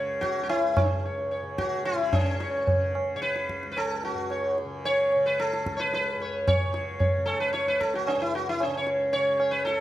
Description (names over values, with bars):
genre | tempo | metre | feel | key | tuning
indian classical, Hindustani | 111 BPM | 4/4 | straight | C# raga malkauns | A4 = 440 Hz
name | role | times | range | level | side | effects
sitar | melody | 0.0-9.8 s | C#4 to C#5 | -26 LUFS | equal | none
tanpura | drone | 0.0-9.8 s | C#2 to C#3 | -36 LUFS | left 1 dB | none
tabla | percussion | 0.2-9.8 s | none | -28 LUFS | right 1 dB | none
room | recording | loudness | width
wet recital hall reverb, RT60 1.6 s | none | -24 LUFS | side -13 dB against mid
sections
0.0-2.1 A section; 2.1-9.8 B section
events
speeding up 0.0-9.8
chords
none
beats
0.49 1.04 1.59 | 2.14 2.68 3.23 3.77 | 4.31 4.85 5.39 5.93 | 6.46 7.00 7.53 8.07 | 8.60 9.13 9.66